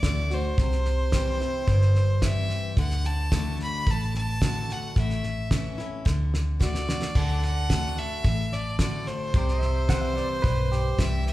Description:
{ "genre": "honky-tonk and classic country", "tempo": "110 BPM", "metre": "4/4", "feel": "straight", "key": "D mixolydian", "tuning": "A4 = 439 Hz", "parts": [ { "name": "clear fiddle", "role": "melody", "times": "0.0-11.3 s", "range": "C5 to B5", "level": "-31 LUFS", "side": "right 2 dB", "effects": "none" }, { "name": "picked steel-string acoustic guitar", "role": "accompaniment", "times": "0.0-11.3 s", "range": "G2 to F#4", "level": "-31 LUFS", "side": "left 2 dB", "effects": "none" }, { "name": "vintage muted fingered electric bass", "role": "bass", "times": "0.0-11.3 s", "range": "G1 to D2", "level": "-27 LUFS", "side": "equal", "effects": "none" }, { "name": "damped 70s drum kit", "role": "drums", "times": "0.0-11.3 s", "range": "crash cymbal, hi-hat, kick drum, snare drum", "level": "-27 LUFS", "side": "equal", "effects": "none" }, { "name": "pedal steel guitar", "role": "sustained chords", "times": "7.2-11.3 s", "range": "A4 to E5", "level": "-39 LUFS", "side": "right 2 dB", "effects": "none" }, { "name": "direct-recorded clean electric guitar", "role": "second line", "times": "9.9-11.0 s", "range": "G4 to F#5", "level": "-35 LUFS", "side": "right 2 dB", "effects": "none" } ], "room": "wet large studio reverb, RT60 1.3 s", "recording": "heard from further back in the room", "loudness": "-23 LUFS", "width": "side -16 dB against mid", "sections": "0.0-7.2 A section; 7.2-11.3 A section", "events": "drum fill 6.1-7.2", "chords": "0.0 D; 0.6 C; 2.8 D; 5.0 A; 6.1 D; 9.3 C" }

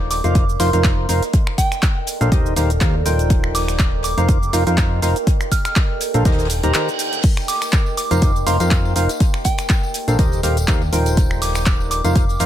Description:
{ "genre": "piano house", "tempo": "122 BPM", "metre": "4/4", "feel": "swing 55% on 16ths", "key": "F mixolydian", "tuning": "A4 = 440 Hz", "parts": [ { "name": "percussive organ stab", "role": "riff", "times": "0.0-12.5 s", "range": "Eb3 to Bb5", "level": "-22 LUFS", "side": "equal", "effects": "analog chorus, sidechain pumping, ping-pong delay" }, { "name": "solid FM bass", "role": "bass", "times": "0.0-12.5 s", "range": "Eb1 to F2", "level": "-20 LUFS", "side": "equal", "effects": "sidechain pumping" }, { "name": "deep dark ambient pad", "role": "texture", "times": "0.0-12.5 s", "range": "A4 to G5", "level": "-28 LUFS", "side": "right 2 dB", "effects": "chorus, built-in reverb, sidechain pumping" }, { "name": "soft synth bell", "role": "melody", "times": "0.1-12.4 s", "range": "G5 to F6", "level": "-26 LUFS", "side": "right 2 dB", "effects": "chorus, vintage 12-bit sampler grit, ping-pong delay" }, { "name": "open jazz drum kit", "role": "drums", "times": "0.1-12.5 s", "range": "hi-hat, snare drum", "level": "-35 LUFS", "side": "left 4 dB", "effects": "none" }, { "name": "punchy analog drum machine", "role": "drums", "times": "0.1-12.5 s", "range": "crash cymbal, finger snaps, handclaps, hi-hat, shaker", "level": "-25 LUFS", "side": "right 1 dB", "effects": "overdrive" }, { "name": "electronic kick drum", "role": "drums", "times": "0.4-12.3 s", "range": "none", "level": "-17 LUFS", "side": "equal", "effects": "overdrive" }, { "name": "reverse cymbal", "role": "sound effects", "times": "6.5-7.2 s", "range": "none", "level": "-28 LUFS", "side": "right 6 dB", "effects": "none" }, { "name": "tambourine", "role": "percussion", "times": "7.2-12.4 s", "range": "none", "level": "-34 LUFS", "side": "left 6 dB", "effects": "none" } ], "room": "little or no reverb", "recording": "none", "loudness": "-15 LUFS", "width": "side -11 dB against mid", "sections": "0.0-12.5 A section", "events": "reverse cymbal 6.5-7.2; break 6.7-7.2", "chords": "0.0 F7sus4; 1.3 Bbmaj9; 2.3 Eb69; 5.3 Bbmaj9; 6.3 Eb6; 7.2 F7sus4; 9.2 Bbmaj9; 10.2 Eb69" }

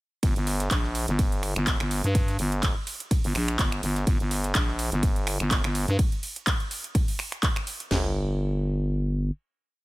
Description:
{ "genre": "bass house", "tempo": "125 BPM", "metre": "4/4", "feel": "swing 55% on 16ths", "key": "G minor", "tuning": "A4 = 440 Hz", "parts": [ { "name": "growling FM bass", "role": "bass", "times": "0.2-9.3 s", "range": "G1 to G2", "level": "-26 LUFS", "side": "equal", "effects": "tube saturation, sidechain pumping" }, { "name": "big-room dance drum kit", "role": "drums", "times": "0.2-7.9 s", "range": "finger snaps, handclaps, hi-hat, ride cymbal", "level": "-30 LUFS", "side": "right 1 dB", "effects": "overdrive" }, { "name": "breakbeat sampler-style drum kit", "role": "drums", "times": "0.2-6.0 s", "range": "ride cymbal, snare drum", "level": "-42 LUFS", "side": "right 2 dB", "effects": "none" }, { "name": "house drum kit", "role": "drums", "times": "0.2-8.0 s", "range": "crash cymbal, kick drum, snare drum, toms", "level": "-25 LUFS", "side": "equal", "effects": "none" } ], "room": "little or no reverb", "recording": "none", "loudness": "-24 LUFS", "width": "side -20 dB against mid", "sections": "0.2-7.9 drop; 7.9-9.8 final note", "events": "drop 0.2-7.9", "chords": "none" }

